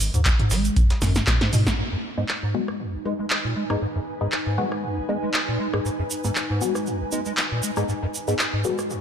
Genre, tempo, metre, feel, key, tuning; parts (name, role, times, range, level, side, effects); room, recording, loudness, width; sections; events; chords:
acid house; 118 BPM; 4/4; swing 55% on 16ths; G# minor; A4 = 439 Hz
round analog bass; bass; 0.0-1.7 s; G#1 to G#2; -23 LUFS; equal; sidechain pumping
breakbeat sampler-style drum kit; drums; 0.0-1.7 s; hi-hat, snare drum; -38 LUFS; right 1 dB
electro analog drum machine; drums; 0.0-8.9 s; handclaps, hi-hat, rim click, snare drum, toms; -26 LUFS; equal
tube shaker; percussion; 0.0-1.8, 5.9-9.0 s; -33 LUFS; right 6 dB
liquid acid bass; riff; 0.1-9.0 s; G#1 to G#3; -27 LUFS; equal; tube saturation, ensemble chorus, tape echo
electronic kick drum; drums; 0.3-1.8 s; -22 LUFS; equal
ethereal airy pad; texture; 2.4-9.0 s; D#4 to G#5; -30 LUFS; right 1 dB; ensemble chorus, built-in reverb, tremolo, sidechain pumping
filtered dub chord stab; stabs; 2.2-8.8 s; G#3 to F#4; -29 LUFS; left 2 dB; phaser, tape echo
light reverb; -21 LUFS; side -8 dB against mid
0.0-1.8 A section; 1.8-9.0 B section
drum fill 1.0-1.8; band accent 1.7
0.0 N.C.; 1.8 G#m